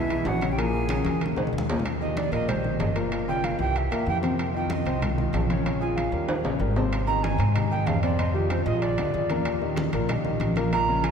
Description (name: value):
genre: Afro-Cuban jazz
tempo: 189 BPM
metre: 4/4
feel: straight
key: Eb major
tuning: A4 = 438 Hz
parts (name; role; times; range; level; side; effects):
- breathy silver concert flute; melody; 0.0-1.2 s; E5 to Ab5; -36 LUFS; equal; none
- breathy mellow tenor recorder; second line; 0.0-11.1 s; E4 to Bb5; -30 LUFS; right 4 dB; none
- warm concert grand piano; accompaniment; 0.0-11.1 s; Bb2 to Bb5; -28 LUFS; left 2 dB; none
- upright bass; bass; 0.0-11.1 s; G1 to Ab2; -28 LUFS; equal; none
- congas; percussion; 0.1-11.1 s; none; -31 LUFS; equal; none
- timbales; percussion; 0.1-11.1 s; none; -34 LUFS; right 1 dB; none
room: wet cathedral reverb, RT60 4.8 s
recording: recorded in a church or concert hall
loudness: -23 LUFS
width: side -7 dB against mid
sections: 0.0-1.9 A section; 1.9-11.1 B section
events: drum fill 1.1-1.9, 6.3-6.9; recorder solo 1.9-11.1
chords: 0.0 E5; 0.6 Bbm7; 1.2 Eb5; 1.9 Eb6; 3.1 Gm7b5; 3.8 C7; 4.4 F7sus4; 5.7 Bbm7; 6.3 Eb6; 6.9 Abmaj7; 8.2 Fm7; 8.8 Bb7; 9.5 Eb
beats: 0.26 | 0.58 0.90 1.22 1.53 | 1.85 2.17 2.48 2.80 | 3.12 3.44 3.75 4.07 | 4.39 4.70 5.02 5.34 | 5.65 5.97 6.29 6.60 | 6.92 7.24 7.55 7.87 | 8.19 8.51 8.82 9.14 | 9.46 9.77 10.09 10.40 | 10.72 11.04